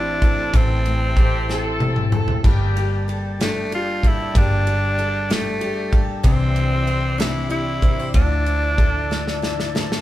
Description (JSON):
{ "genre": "six-eight pop ballad", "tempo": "63 BPM (dotted quarters)", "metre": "6/8", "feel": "straight", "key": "unclear", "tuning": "A4 = 440 Hz", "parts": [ { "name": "raspy tenor saxophone", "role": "melody", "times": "0.0-9.7 s", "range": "A3 to F4", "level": "-24 LUFS", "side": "equal", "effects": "none" }, { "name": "picked steel-string acoustic guitar", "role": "accompaniment", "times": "0.0-10.0 s", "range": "A2 to C5", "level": "-26 LUFS", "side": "left 3 dB", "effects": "none" }, { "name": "tonewheel organ", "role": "sustained chords", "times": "0.0-10.0 s", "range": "F3 to C6", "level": "-34 LUFS", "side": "left 1 dB", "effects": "slow rotary speaker" }, { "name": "picked steel-string acoustic guitar", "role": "arpeggios", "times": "0.0-10.0 s", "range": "E3 to A4", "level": "-34 LUFS", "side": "right 6 dB", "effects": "none" }, { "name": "vintage muted fingered electric bass", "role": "bass", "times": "0.0-10.0 s", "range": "G1 to D2", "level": "-23 LUFS", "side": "equal", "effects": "none" }, { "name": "natural country drum kit", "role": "drums", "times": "0.2-10.0 s", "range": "crash cymbal, kick drum, ride cymbal, snare drum, toms", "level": "-19 LUFS", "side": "equal", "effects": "none" }, { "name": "muted French horn section", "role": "second line", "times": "1.2-3.2 s", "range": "G4 to A4", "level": "-28 LUFS", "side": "left 1 dB", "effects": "none" } ], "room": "moderate studio reverb, RT60 0.8 s", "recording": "band playing live in one room", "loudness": "-17 LUFS", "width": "side -14 dB against mid", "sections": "0.0-10.0 A section", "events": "drum fill 1.5-2.4, 9.1-10.0", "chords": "0.0 Am7; 2.4 Gmadd9; 6.2 Cadd9; 8.1 Dmadd9" }